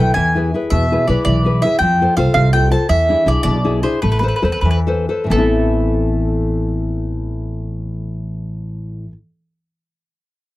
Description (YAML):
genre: italian folk, Italian serenade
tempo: 86-111 BPM (dotted quarters)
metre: 6/8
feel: straight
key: A minor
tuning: A4 = 439 Hz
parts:
  - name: mandolin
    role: melody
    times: 0.0-9.1 s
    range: A4 to A5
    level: -18 LUFS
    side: right 1 dB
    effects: none
  - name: nylon-string guitar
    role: accompaniment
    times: 0.0-9.2 s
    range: A2 to C5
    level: -19 LUFS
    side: left 2 dB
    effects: none
  - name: upright bass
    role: bass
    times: 0.0-9.1 s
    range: A1 to F2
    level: -18 LUFS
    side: equal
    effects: none
room: little or no reverb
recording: dry, close 1970s-style studio recording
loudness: -14 LUFS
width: side -17 dB against mid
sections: 0.0-5.3 A section; 5.3-8.0 B section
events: slowing down 2.9-5.3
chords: 0.2 E; 1.8 F; 2.9 E7; 4.0 Amadd9